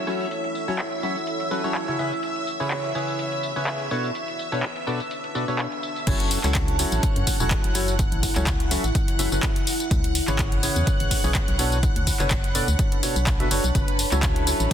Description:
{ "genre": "piano house", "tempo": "125 BPM", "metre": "4/4", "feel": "swing 55% on 16ths", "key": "F# minor", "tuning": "A4 = 441 Hz", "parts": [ { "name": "string machine, violins", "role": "sustained chords", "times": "0.0-14.7 s", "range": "B4 to F#6", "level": "-32 LUFS", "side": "equal", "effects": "ensemble chorus, sidechain pumping" }, { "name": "percussive organ stab", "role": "riff", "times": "0.0-14.7 s", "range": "B2 to E5", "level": "-28 LUFS", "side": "equal", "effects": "lush chorus, sidechain pumping, dub echo" }, { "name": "deep dark ambient pad", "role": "texture", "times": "0.0-14.7 s", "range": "D4 to B5", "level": "-31 LUFS", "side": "equal", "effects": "chorus, built-in reverb, sidechain pumping" }, { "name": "garage drum kit", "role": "drums", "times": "0.1-14.7 s", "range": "crash cymbal, handclaps, hi-hat, tambourine", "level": "-28 LUFS", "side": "left 1 dB", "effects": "low-pass filter on perc, low-pass filter on hats, low-pass filter on snare, low-pass filter on cymbals, low-pass filter on room" }, { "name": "organ-like FM bass", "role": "bass", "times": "6.1-14.7 s", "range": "E1 to F#2", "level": "-25 LUFS", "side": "equal", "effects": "tube saturation, sidechain pumping" }, { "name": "electronic kick drum", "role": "drums", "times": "6.1-14.7 s", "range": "none", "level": "-24 LUFS", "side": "equal", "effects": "none" } ], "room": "light reverb", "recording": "dense, heavily limited modern master", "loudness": "-21 LUFS", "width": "side -10 dB against mid", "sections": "0.0-6.1 A section; 6.1-14.7 B section", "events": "drop 6.1-14.7", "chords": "0.0 F#m7; 2.0 C#m7; 3.9 Bm9; 6.1 F#m7; 9.7 C#m7; 11.6 Bm9; 13.8 F#m7", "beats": "| 0.31 0.79 1.27 1.75 | 2.23 2.71 3.19 3.67 | 4.15 4.63 5.11 5.59 | 6.07 6.55 7.03 7.51 | 7.99 8.47 8.95 9.43 | 9.91 10.39 10.87 11.35 | 11.83 12.31 12.79 13.27 | 13.75 14.23 14.71" }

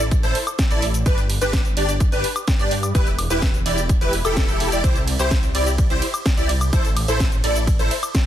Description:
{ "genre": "EDM, festival progressive house", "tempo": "127 BPM", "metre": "4/4", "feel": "straight", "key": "unclear", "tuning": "A4 = 441 Hz", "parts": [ { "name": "wide detuned saw bass", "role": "bass", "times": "0.0-7.9 s", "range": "E1 to G2", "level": "-24 LUFS", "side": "equal", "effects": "chorus, sidechain pumping" }, { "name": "house drum kit", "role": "drums", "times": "0.0-8.2 s", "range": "cabasa, hi-hat, ride cymbal, snare drum, woodblock", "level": "-26 LUFS", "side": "equal", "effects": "overdrive" }, { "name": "electronic kick drum", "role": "drums", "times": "0.1-8.2 s", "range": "none", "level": "-19 LUFS", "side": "equal", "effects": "overdrive" }, { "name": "plucky unison lead", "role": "arpeggios", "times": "0.2-7.9 s", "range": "A4 to D5", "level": "-27 LUFS", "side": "equal", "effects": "ensemble chorus, sidechain pumping, dub echo" }, { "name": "supersaw chords", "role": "riff", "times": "0.2-7.9 s", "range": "D4 to D5", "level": "-25 LUFS", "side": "equal", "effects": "ensemble chorus, sidechain pumping, dub echo" } ], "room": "little or no reverb", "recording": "dense, heavily limited modern master", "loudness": "-17 LUFS", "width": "side -11 dB against mid", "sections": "0.0-8.3 A section", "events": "none", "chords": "0.0 Am; 1.1 G; 2.9 Em; 4.8 C; 6.7 Am", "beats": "0.11 0.59 | 1.06 1.53 2.00 2.48 | 2.95 3.42 3.89 4.37 | 4.84 5.31 5.78 6.26 | 6.73 7.20 7.67 8.15" }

